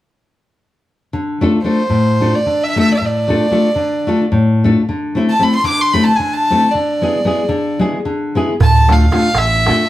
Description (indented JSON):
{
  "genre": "balkan folk, Balkan wedding band",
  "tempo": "free time",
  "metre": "none",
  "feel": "none",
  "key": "D dorian sharp4",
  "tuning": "A4 = 441 Hz",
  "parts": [
    { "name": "nylon-string guitar", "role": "accompaniment", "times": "1.1-9.8 s", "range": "A2 to A4", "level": "-15 LUFS", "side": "left 2 dB", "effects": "none" },
    { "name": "rich violin", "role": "melody", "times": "1.6-9.9 s", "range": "C5 to D6", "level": "-16 LUFS", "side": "right 1 dB", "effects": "plate reverb" },
    { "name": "overdriven fingered electric bass", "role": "bass", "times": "8.6-9.7 s", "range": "A1 to D2", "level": "-13 LUFS", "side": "right 1 dB", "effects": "none" },
    { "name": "darbuka", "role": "percussion", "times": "8.6-9.8 s", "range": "none", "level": "-17 LUFS", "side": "right 4 dB", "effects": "none" }
  ],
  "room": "wet studio reverb, RT60 0.5 s",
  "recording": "heard from further back in the room",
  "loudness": "-12 LUFS",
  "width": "side -14 dB against mid",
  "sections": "1.1-8.6 A section; 8.6-9.9 B section",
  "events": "none",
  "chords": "1.1 Dm; 4.9 Am/D; 6.7 E/D; 8.6 Dm",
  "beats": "free time"
}